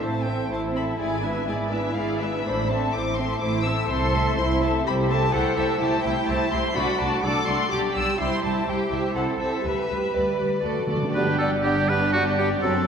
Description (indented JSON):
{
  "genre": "quick classical-period movement for symphony orchestra",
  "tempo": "124 BPM",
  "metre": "3/4",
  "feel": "rubato",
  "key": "A minor, G major from 5.3 s",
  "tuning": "A4 = 440 Hz",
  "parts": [
    { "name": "muted chamber violin section", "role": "melody", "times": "0.0-12.9 s", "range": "D5 to E6", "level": "-30 LUFS", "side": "left 4 dB", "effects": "none" },
    { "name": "muted chamber violin section", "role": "second line", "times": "0.0-12.9 s", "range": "D4 to E5", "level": "-28 LUFS", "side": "left 2 dB", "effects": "none" },
    { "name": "muted chamber viola section", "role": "accompaniment", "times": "0.0-12.9 s", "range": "G3 to G4", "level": "-29 LUFS", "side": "right 1 dB", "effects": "none" },
    { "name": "muted chamber cello section", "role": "bass", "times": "0.0-12.9 s", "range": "F#2 to B4", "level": "-28 LUFS", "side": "right 1 dB", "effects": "none" },
    { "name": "muted symphonic double bass section", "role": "bass", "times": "0.0-12.9 s", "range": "F#1 to D2", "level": "-29 LUFS", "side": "right 2 dB", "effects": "none" },
    { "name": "timpani", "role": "percussion", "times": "10.7-11.1 s", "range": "D3", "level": "-30 LUFS", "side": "equal", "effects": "none" },
    { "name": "bright oboe", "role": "second line", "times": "11.1-12.9 s", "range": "F#4 to B4", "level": "-24 LUFS", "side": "right 1 dB", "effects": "none" },
    { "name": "bright clarinet", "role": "second line", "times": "11.2-12.7 s", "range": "B3 to C4", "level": "-34 LUFS", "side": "equal", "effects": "none" },
    { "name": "large flute ensemble", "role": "second line", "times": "11.2-12.7 s", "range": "D5", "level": "-36 LUFS", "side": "left 1 dB", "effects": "none" },
    { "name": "warm bassoon", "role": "accompaniment", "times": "11.2-12.7 s", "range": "F#3 to G3", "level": "-28 LUFS", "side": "right 2 dB", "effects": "none" },
    { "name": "mellow French horn section", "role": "sustained chords", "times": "11.2-12.9 s", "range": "G3 to D4", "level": "-28 LUFS", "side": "left 1 dB", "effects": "none" }
  ],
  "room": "wet concert hall reverb, RT60 2.0 s",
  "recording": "none",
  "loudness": "-21 LUFS",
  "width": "side -7 dB against mid",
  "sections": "0.0-11.2 A section; 11.2-12.9 B section",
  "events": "timpani fill 10.7-11.2",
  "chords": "0.0 Am; 1.0 E7/G#; 2.5 Am; 3.9 Am7/C; 6.8 D7/C; 7.7 G/B; 8.2 C; 9.2 Am/C; 9.7 G/D; 10.7 D; 11.2 G",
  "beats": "0.01 0.50 | 0.99 1.48 1.97 | 2.45 2.94 3.42 | 3.90 4.38 4.86 | 5.34 5.82 6.29 | 6.76 7.24 7.72 | 8.20 8.68 9.16 | 9.66 10.16 10.66 | 11.16 11.65 12.14 | 12.63"
}